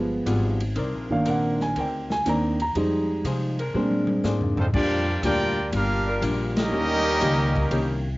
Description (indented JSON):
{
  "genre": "jazz, big band swing",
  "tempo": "121 BPM",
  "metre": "4/4",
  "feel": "swing 69% on 8ths",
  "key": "Bb major from 4.7 s",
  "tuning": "A4 = 440 Hz",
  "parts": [
    { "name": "archtop guitar, miked and amplified", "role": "accompaniment", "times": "0.0-8.1 s", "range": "Bb2 to D5", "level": "-29 LUFS", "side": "left 2 dB", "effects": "cassette tape" },
    { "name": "dark concert grand piano", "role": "accompaniment", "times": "0.0-4.5 s", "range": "Eb3 to Bb5", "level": "-24 LUFS", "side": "right 1 dB", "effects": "cassette tape" },
    { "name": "upright bass", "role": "bass", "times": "0.0-8.2 s", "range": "G1 to C3", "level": "-27 LUFS", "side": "equal", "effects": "none" },
    { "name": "swinging big-band drum kit", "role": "drums", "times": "0.3-7.9 s", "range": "crash cymbal, hi-hat, kick drum, ride cymbal, snare drum, toms", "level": "-31 LUFS", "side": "equal", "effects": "cassette tape" },
    { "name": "mellow saxophone section", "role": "sustained chords", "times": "0.8-7.9 s", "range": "C3 to Bb4", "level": "-35 LUFS", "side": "left 1 dB", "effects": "cassette tape" },
    { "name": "bright trumpet section", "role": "melody", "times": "4.6-8.0 s", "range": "Ab3 to G5", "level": "-25 LUFS", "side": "equal", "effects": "cassette tape" },
    { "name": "warm trombone section", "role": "second line", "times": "4.6-8.0 s", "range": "F3 to G4", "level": "-28 LUFS", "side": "right 1 dB", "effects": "cassette tape" }
  ],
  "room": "moderate booth ambience, RT60 0.2 s",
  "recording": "home recording on cassette, nothing above 7.6 kHz",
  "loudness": "-21 LUFS",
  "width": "side -20 dB against mid",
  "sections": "0.0-4.7 A section; 4.7-8.2 B section",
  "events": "grand piano solo 0.0-4.7; drum fill 3.7-4.7; band accent 6.5",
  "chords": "0.0 G7b9; 0.8 Cm9; 2.8 Fm7; 3.7 Bb9; 4.7 Bb6; 6.7 Eb7"
}